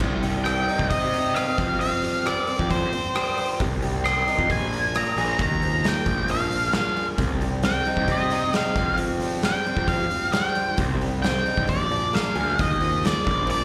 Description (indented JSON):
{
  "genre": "quiet-loud alternative rock",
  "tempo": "134 BPM",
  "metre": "4/4",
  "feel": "straight",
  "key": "C minor",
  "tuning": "A4 = 437 Hz",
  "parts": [
    { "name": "picked swing-style acoustic guitar", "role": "arpeggios", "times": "0.0-13.6 s", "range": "Bb2 to Ab4", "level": "-32 LUFS", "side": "equal", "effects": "slapback echo, tape echo" },
    { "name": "fuzz picked electric bass", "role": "bass", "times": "0.0-13.6 s", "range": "Bb1 to C3", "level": "-29 LUFS", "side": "equal", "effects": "overdrive" },
    { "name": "oversized low-tuned drum kit", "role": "drums", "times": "0.0-13.6 s", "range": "crash cymbal, hi-hat, kick drum, rim click, snare drum", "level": "-29 LUFS", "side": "equal", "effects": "none" },
    { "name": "octave-fuzz lead guitar", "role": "melody", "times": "0.4-13.6 s", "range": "C5 to C6", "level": "-28 LUFS", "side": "equal", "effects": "distortion, slapback echo, tape echo" }
  ],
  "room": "light reverb",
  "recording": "live gig heard through the venue's PA, club reverb",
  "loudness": "-23 LUFS",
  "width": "mono",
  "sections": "0.0-13.6 A section",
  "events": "none",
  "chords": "0.0 Cm; 1.6 Fsus2; 3.6 Cm; 4.5 Bb7; 5.4 Ebsus2; 6.1 Bb7; 7.2 Cm; 8.8 Fsus2; 10.8 Cm; 11.7 Bb7; 12.6 Ebsus2"
}